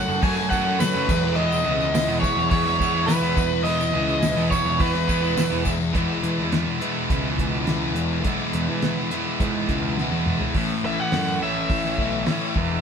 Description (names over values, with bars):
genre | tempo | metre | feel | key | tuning
indie rock | 104 BPM | 4/4 | straight | E major | A4 = 444 Hz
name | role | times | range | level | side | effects
cranked stack guitar | melody | 0.0-5.6, 10.9-12.8 s | B4 to G#5 | -24 LUFS | right 1 dB | overdrive
glassy synth bell | second line | 0.0-5.6 s | B5 to G#6 | -35 LUFS | right 4 dB | none
lush unison pad | sustained chords | 0.0-5.9 s | E4 to C#6 | -34 LUFS | right 2 dB | chorus
sludgy distorted guitar | riff | 0.0-12.8 s | E2 to F#4 | -26 LUFS | left 4 dB | overdrive
high-gain distorted guitar | riff | 0.1-12.8 s | A2 to E4 | -28 LUFS | right 5 dB | distortion
fuzz picked electric bass | bass | 0.1-12.8 s | E1 to F#3 | -26 LUFS | right 1 dB | overdrive
tambourine | percussion | 0.1-5.9 s | none | -41 LUFS | right 5 dB | none
cloth-damped thuddy drum kit | drums | 0.2-12.7 s | crash cymbal, hi-hat, kick drum, snare drum, toms | -26 LUFS | equal | none
room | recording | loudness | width
moderate stone room reverb, RT60 1.1 s | band playing live in one room | -20 LUFS | side -7 dB against mid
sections
0.0-5.9 A section; 5.9-10.5 B section; 10.5-12.8 C section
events
drum fill 10.0-10.5; overdriven electric guitar solo 10.5-12.8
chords
0.0 F#m; 1.1 Eadd9; 3.4 E; 10.5 A